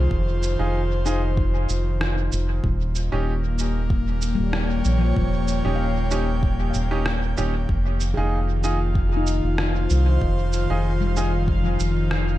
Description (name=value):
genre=ambient dub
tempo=95 BPM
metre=4/4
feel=straight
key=F minor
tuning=A4 = 440 Hz
part: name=airy breathy pad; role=sustained chords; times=0.0-12.4 s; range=Eb3 to G5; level=-28 LUFS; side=left 1 dB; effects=chorus, vintage 12-bit sampler grit
part: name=handpan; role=arpeggios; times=0.0-12.4 s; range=F3 to F5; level=-32 LUFS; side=left 5 dB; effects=tape echo
part: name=round analog bass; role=bass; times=0.0-12.4 s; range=Eb1 to C2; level=-22 LUFS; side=equal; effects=tube saturation
part: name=electronic kick drum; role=drums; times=0.1-11.6 s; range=none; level=-24 LUFS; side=equal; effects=none
part: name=electronic cabasa and rim click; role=drums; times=0.4-12.2 s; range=none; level=-31 LUFS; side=right 1 dB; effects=dub echo
part: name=bright upright piano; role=stabs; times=0.6-11.3 s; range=Db4 to Ab4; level=-31 LUFS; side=right 2 dB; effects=dub echo
part: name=bubbling stepped-filter texture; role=texture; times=8.1-12.4 s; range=F5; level=-36 LUFS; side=right 7 dB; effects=chorus, built-in reverb
room=little or no reverb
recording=none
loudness=-20 LUFS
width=side -15 dB against mid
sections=0.0-12.4 A section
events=none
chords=0.0 Fm7; 2.6 Eb7; 7.7 Fm7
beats=| 0.11 0.74 1.38 2.01 | 2.64 3.27 3.90 4.54 | 5.17 5.80 6.43 7.06 | 7.69 8.32 8.96 9.59 | 10.22 10.85 11.48 12.11